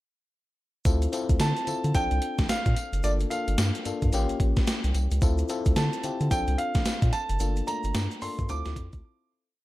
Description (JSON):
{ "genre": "R&B, new jack swing", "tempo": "110 BPM", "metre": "4/4", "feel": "swing 61% on 16ths", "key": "D minor", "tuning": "A4 = 440 Hz", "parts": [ { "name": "FM electric piano", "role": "accompaniment", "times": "0.9-9.6 s", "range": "A3 to A4", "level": "-32 LUFS", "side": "left 4 dB", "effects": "chorus" }, { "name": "round analog bass", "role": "bass", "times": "0.9-9.0 s", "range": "F#1 to D3", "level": "-26 LUFS", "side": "equal", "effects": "none" }, { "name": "gated 80s digital drum machine", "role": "drums", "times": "0.9-9.0 s", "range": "hi-hat, kick drum, snare drum, tambourine", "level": "-27 LUFS", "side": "equal", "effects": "gated reverb, gated reverb snare, overdrive" }, { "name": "tube shaker", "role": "percussion", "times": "0.9-9.0 s", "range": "none", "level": "-47 LUFS", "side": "right 7 dB", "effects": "none" }, { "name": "warm concert grand piano", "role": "melody", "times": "1.4-9.3 s", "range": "D5 to D6", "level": "-32 LUFS", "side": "right 2 dB", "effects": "none" } ], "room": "little or no reverb", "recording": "none", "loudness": "-24 LUFS", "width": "side -17 dB against mid", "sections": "0.9-9.6 chorus", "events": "fade-out 7.4-9.6; break 9.0-9.6", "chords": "0.9 Dm9; 1.9 Bbmaj9; 3.0 Gm9; 4.1 A7b9b13; 5.2 Dm9; 6.3 Bbmaj9; 7.4 Gm9; 8.5 Dm9", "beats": "| 0.85 1.40 1.95 2.49 | 3.04 3.58 4.13 4.67 | 5.22 5.76 6.31 6.85 | 7.40 7.95 8.49 9.04" }